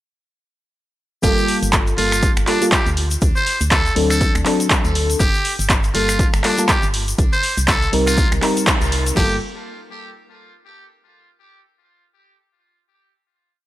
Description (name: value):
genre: deep house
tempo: 121 BPM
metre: 4/4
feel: swing 58% on 16ths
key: G minor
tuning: A4 = 442 Hz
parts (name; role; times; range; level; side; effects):
- trumpet with metal mute; melody; 1.2-9.4 s; D4 to C5; -22 LUFS; equal; tape echo
- mellow FM electric piano; stabs; 1.2-9.4 s; F#3 to Bb4; -21 LUFS; left 1 dB; chorus, phaser, cassette tape, sidechain pumping, tape echo
- organ-like FM bass; bass; 1.2-9.4 s; G1 to D2; -22 LUFS; equal; sidechain pumping
- deep house drum kit; drums; 1.2-9.3 s; crash cymbal, kick drum, snare drum; -19 LUFS; equal; overdrive
- deep house drum kit; drums; 1.2-9.1 s; finger snaps, handclaps, hi-hat; -20 LUFS; equal; overdrive
- egg shaker; percussion; 1.2-9.1 s; none; -27 LUFS; left 3 dB; none
room: light reverb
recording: dry, gritty hardware recording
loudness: -14 LUFS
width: side -15 dB against mid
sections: 1.2-9.2 drop; 9.2-11.2 final chord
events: drop 1.2-9.2; band accent 8.7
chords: 1.2 Gm9; 3.0 D7; 5.2 Gm9; 7.2 Cm7; 9.2 Gm9